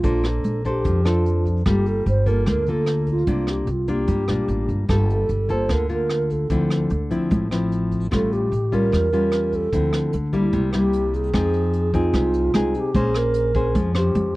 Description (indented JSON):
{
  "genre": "bossa nova",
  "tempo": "149 BPM",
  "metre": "4/4",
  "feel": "straight",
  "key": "D minor, F minor from 11.3 s",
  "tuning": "A4 = 440 Hz",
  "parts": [
    { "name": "mellow hollow wooden-headed alto flute", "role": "melody", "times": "0.0-14.3 s", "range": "E4 to C5", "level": "-24 LUFS", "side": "right 2 dB", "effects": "none" },
    { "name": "nylon-string guitar", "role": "accompaniment", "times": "0.0-14.4 s", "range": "A2 to C5", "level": "-23 LUFS", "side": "left 2 dB", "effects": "none" },
    { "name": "upright bass", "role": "bass", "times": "0.0-14.3 s", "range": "G1 to G2", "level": "-23 LUFS", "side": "equal", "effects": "none" },
    { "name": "vintage brush drum kit", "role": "drums", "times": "0.0-14.2 s", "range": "hi-hat, kick drum, rim click", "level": "-29 LUFS", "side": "equal", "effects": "none" }
  ],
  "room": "little or no reverb",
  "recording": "dry, close 1970s-style studio recording",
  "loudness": "-18 LUFS",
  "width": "side -19 dB against mid",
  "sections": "0.0-11.3 A section; 11.3-14.4 B section",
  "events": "none",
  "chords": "0.0 Bbmaj9; 1.7 Gm9; 3.3 C9sus4; 4.9 Gm9; 6.5 Dm9; 8.1 A7b9b13; 9.7 Dm9; 10.5 C7; 11.3 Fm7; 12.9 Bbm9"
}